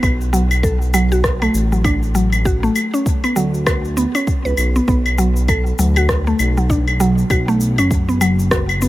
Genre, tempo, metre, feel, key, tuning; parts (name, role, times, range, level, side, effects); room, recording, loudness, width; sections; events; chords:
organic downtempo; 99 BPM; 4/4; swing 59% on 16ths; B minor; A4 = 440 Hz
mallet-like synth pluck; arpeggios; 0.0-8.9 s; F#3 to B4; -18 LUFS; equal; chorus, cassette tape, tape echo
smooth synth bass; bass; 0.0-8.9 s; F#1 to D2; -17 LUFS; equal; sidechain pumping
electronic claves, shaker and rim click; drums; 0.0-8.9 s; -22 LUFS; left 1 dB
electronic kick drum; drums; 0.0-8.7 s; -19 LUFS; equal
digital ambience; -14 LUFS; side -16 dB against mid
0.0-8.9 A section
0.0 Bm